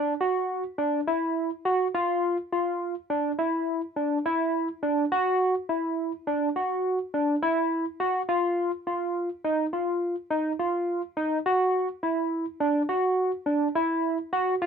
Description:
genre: progressive instrumental, progressive.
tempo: 208 BPM (eighths).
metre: 11/8.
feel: straight.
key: unclear.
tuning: A4 = 440 Hz.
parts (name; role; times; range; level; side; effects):
barky tine electric piano; solo; 0.0-14.7 s; D4 to F#4; -24 LUFS; equal; analog chorus.
room: moderate small room reverb, RT60 0.5 s.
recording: rough home demo mix.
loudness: -24 LUFS.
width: side -6 dB against mid.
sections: 0.0-14.7 A section.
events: none.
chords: none.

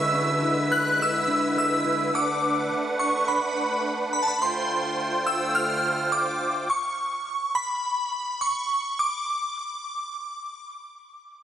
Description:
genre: dream pop.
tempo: 105 BPM.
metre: 4/4.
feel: straight.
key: unclear.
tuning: A4 = 440 Hz.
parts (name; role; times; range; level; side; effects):
shimmering bell with halo; melody; 0.0-10.7 s; A5 to F#6; -25 LUFS; equal; ensemble chorus, phaser, tape echo.
musette accordion; sustained chords; 0.0-6.7 s; D3 to G5; -27 LUFS; right 2 dB; none.
mellow electric guitar; arpeggios; 0.0-2.7 s; D3 to B4; -29 LUFS; left 2 dB; analog chorus, tape echo.
room: light reverb.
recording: dry, gritty hardware recording, cassette tape.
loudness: -23 LUFS.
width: side -10 dB against mid.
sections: 0.0-11.3 A section.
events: none.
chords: 0.0 E/D; 2.1 D6; 4.4 Fadd9/D; 6.7 N.C..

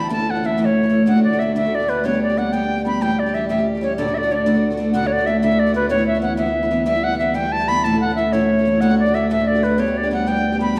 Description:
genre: celtic folk, Celtic jig.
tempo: 124 BPM (dotted quarters).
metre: 6/8.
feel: straight.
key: D major.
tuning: A4 = 440 Hz.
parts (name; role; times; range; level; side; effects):
bright reedy wooden flute; melody; 0.0-10.8 s; B4 to B5; -22 LUFS; equal; none.
picked steel-string acoustic guitar; accompaniment; 0.0-10.8 s; D2 to G4; -22 LUFS; equal; none.
pedal harmonium; drone; 0.0-10.8 s; D2; -29 LUFS; equal; none.
room: wet recital hall reverb, RT60 1.7 s.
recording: heard from further back in the room.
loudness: -19 LUFS.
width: mono.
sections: 0.0-4.9 A section; 4.9-10.8 A section.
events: none.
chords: 0.1 A; 1.1 D; 2.0 G; 3.0 A7; 4.0 D; 5.9 Aadd9; 6.9 Em; 7.8 A; 8.8 D; 9.8 G.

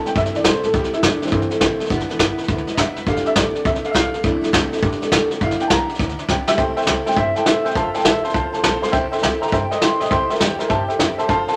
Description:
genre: rockabilly.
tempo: 205 BPM.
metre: 4/4.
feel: swing 65% on 8ths.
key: C major.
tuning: A4 = 441 Hz.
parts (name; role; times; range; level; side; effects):
picked steel-string acoustic guitar; accompaniment; 0.0-11.6 s; C3 to D5; -28 LUFS; equal; none.
warm upright piano; accompaniment; 0.0-11.5 s; E3 to C6; -25 LUFS; equal; none.
upright bass; bass; 0.0-11.5 s; F1 to Bb2; -32 LUFS; equal; none.
vintage brush drum kit; drums; 0.1-11.6 s; hi-hat, kick drum, snare drum; -22 LUFS; equal; none.
electric guitar through a small old amp; melody; 7.1-11.3 s; G4 to Bb5; -26 LUFS; equal; spring reverb.
room: wet small room reverb, RT60 0.5 s.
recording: none.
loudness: -19 LUFS.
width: mono.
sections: 0.0-6.6 A section; 6.6-11.6 B section.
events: upright piano solo 0.0-6.6; drum fill 6.3.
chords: 0.0 C6; 1.9 G6; 3.1 F6; 4.2 C6; 4.8 F6; 5.4 G6; 6.6 C6; 7.8 F6; 8.9 C6.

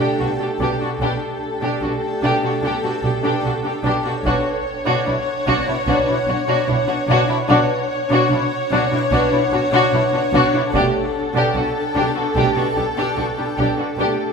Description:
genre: cinematic, suspense film score.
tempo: 74 BPM.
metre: 4/4.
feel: straight.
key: unclear.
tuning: A4 = 440 Hz.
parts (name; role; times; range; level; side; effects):
muted studio violin section; melody; 0.0-14.3 s; A4 to C#5; -23 LUFS; left 2 dB; none.
muted studio violin section; second line; 0.0-14.2 s; E4 to G4; -23 LUFS; left 3 dB; none.
muted studio viola section; accompaniment; 0.0-14.2 s; D4; -23 LUFS; equal; none.
granular cloud pad; sustained chords; 0.0-14.3 s; D4 to G5; -27 LUFS; left 1 dB; built-in reverb.
warm French horn section; sustained chords; 0.0-14.3 s; A3 to C#5; -26 LUFS; right 1 dB; none.
muted studio cello section; bass; 0.0-14.1 s; B2; -25 LUFS; right 3 dB; none.
muted symphonic double bass section; bass; 0.2-14.1 s; B1; -27 LUFS; right 3 dB; none.
taiko ensemble; drums; 4.3-5.8, 10.7-12.3 s; none; -32 LUFS; equal; none.
room: moderate scoring stage reverb, RT60 2.1 s.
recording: minimal, uncompressed stereo recording.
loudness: -16 LUFS.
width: side -5 dB against mid.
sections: 0.0-14.3 A section.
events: none.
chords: 0.0 Gadd9/B; 4.3 Bmadd9; 10.7 Gadd9/B.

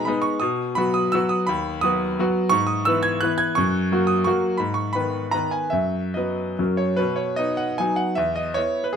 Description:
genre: classical, romantic triple-time dance for piano with dotted rhythms.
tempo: 132-187 BPM.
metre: 3/4.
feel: rubato.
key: B major.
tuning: A4 = 440 Hz.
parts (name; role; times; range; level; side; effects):
bright grand piano; solo; 0.0-9.0 s; D#2 to G#6; -20 LUFS; equal; none.
room: moderate stone room reverb, RT60 1.3 s.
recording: none.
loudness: -20 LUFS.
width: side -7 dB against mid.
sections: 0.0-7.0 A section; 7.0-9.0 B section.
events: none.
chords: 0.4 B; 1.5 B/D#; 2.5 E/G#; 3.6 F#; 4.6 G#m; 5.7 B/F#; 6.6 F#; 7.0 B; 8.2 E5.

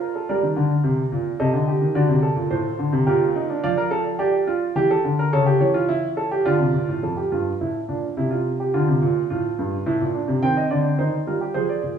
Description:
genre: classical, baroque-style 3-part fugue for grand piano.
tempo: 107 BPM.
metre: 3/4.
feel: straight.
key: unclear.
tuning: A4 = 439 Hz.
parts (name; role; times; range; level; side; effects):
warm baby grand piano; solo; 0.0-12.0 s; F2 to G5; -19 LUFS; right 1 dB; none.
room: wet stone room reverb, RT60 1.4 s.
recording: heard from further back in the room.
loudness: -19 LUFS.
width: side -8 dB against mid.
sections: 0.0-7.0 A section; 7.0-12.0 B section.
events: none.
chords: 0.3 Gm; 1.4 Cm; 2.0 D; 3.1 Gm/Bb; 3.6 Dm/F; 4.8 Gm; 5.3 A/C#; 6.5 Dm; 7.0 Dm/F; 8.2 C; 8.7 Bb; 9.9 Am; 10.4 Cm.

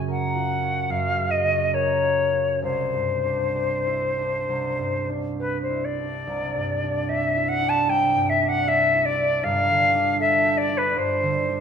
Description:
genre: classical, impressionist duo for flute and harp.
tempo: 64-80 BPM.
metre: 4/4.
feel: rubato.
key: C lydian.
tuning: A4 = 440 Hz.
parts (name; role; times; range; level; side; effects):
concert harp; accompaniment; 0.0-11.6 s; G1 to A#4; -27 LUFS; right 3 dB; none.
silver concert flute; melody; 0.1-11.6 s; B4 to A5; -21 LUFS; left 2 dB; none.
room: moderate recital hall reverb, RT60 1.6 s.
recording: minimal, uncompressed stereo recording.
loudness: -20 LUFS.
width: side -7 dB against mid.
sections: 0.0-6.3 A section; 6.3-11.6 A section.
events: none.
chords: 0.0 F#maj7; 2.6 Cadd9; 9.4 G9sus4.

